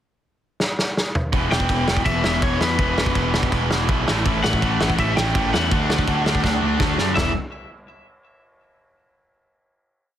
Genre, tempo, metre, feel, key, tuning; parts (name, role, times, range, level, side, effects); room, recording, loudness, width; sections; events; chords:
punk rock; 164 BPM; 4/4; straight; A4 = 442 Hz
loose indie drum kit; drums; 0.6-7.3 s; crash cymbal, kick drum, snare drum, toms; -22 LUFS; equal; soft clipping on kick
distorted electric guitar; riff; 1.3-7.3 s; E2 to D4; -27 LUFS; left 11 dB; distortion
overdriven electric guitar; riff; 1.3-7.3 s; E2 to D4; -26 LUFS; right 14 dB
fuzz picked electric bass; bass; 1.3-7.3 s; E1 to F#2; -24 LUFS; equal; overdrive
lightly driven lead guitar; melody; 1.5-7.3 s; B4 to G5; -26 LUFS; left 2 dB; digital delay
fuzz guitar; riff; 4.2-7.3 s; A2 to F#4; -27 LUFS; equal; distortion
little or no reverb; dense, heavily limited modern master; -18 LUFS; side -11 dB against mid
0.0-1.3 pickup bar; 1.3-7.2 riff; 7.2-8.6 final chord
drum fill 0.6-1.3, 6.4-7.2
0.0 N.C.; 1.3 E5; 4.1 A; 5.7 D; 7.2 E5